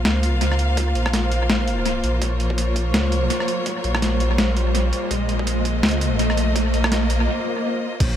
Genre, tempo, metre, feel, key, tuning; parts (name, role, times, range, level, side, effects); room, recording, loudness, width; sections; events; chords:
half-time drum and bass; 166 BPM; 4/4; swing 58% on 16ths, half-time; Bb minor; A4 = 442 Hz
bright studio string section; sustained chords; 0.0-8.2 s; Bb3 to F5; -25 LUFS; left 1 dB; sidechain pumping
dark detuned saw bass; bass; 0.0-8.2 s; Bb1 to Db2; -21 LUFS; equal
riser and swell; sound effects; 0.4-8.0 s; -27 LUFS; right 1 dB
boom bap sampler-style drum kit; drums; 0.1-8.1 s; crash cymbal, hi-hat, rim click, snare drum; -23 LUFS; left 1 dB; overdrive, tape echo
electronic kick drum; drums; 0.8-8.1 s; -25 LUFS; equal; overdrive, high-pass filter on kick, high-pass filter on room
moderate spring reverb, RT60 1.8 s, digital ambience; echo-heavy mix; -18 LUFS; side -10 dB against mid
0.0-8.0 A section
build-up 0.0-8.0; riser 0.4-7.3; break 7.3-8.0; swell 7.3-8.0
0.0 Bbm